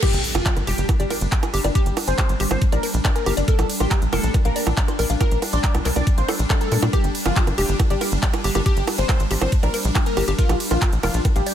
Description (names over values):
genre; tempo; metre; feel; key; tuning
psychedelic trance; 139 BPM; 4/4; straight; G phrygian; A4 = 440 Hz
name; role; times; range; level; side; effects
wide unison lead; melody; 0.0-11.5 s; F4 to D5; -27 LUFS; left 1 dB; phaser, sidechain pumping, tape echo
evolving wavetable pad; sustained chords; 0.3-11.5 s; G3 to D4; -28 LUFS; equal; ensemble chorus, built-in reverb, sidechain pumping
woody wave-folded pluck; riff; 0.0-11.5 s; G4 to C6; -29 LUFS; moving between left 5 dB and right 2 dB; chorus, auto-pan, sidechain pumping, tape echo
drum and bass drum kit; drums; 0.0-11.5 s; bongos, crash cymbal, handclaps, hi-hat, ride cymbal; -26 LUFS; right 3 dB; none
electronic kick drum; drums; 0.0-11.3 s; none; -20 LUFS; equal; none
riser and impact; sound effects; 0.0-1.8 s; none; -31 LUFS; equal; none
tight sequencer bass; bass; 0.1-11.4 s; F1 to Bb2; -22 LUFS; equal; high-pass filter
room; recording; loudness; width
digital ambience; none; -18 LUFS; side -10 dB against mid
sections
0.0-11.5 A section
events
drop 0.0-11.5; impact 0.0-1.8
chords
0.0 G5; 3.5 Bb5; 6.9 G5; 10.4 Bb5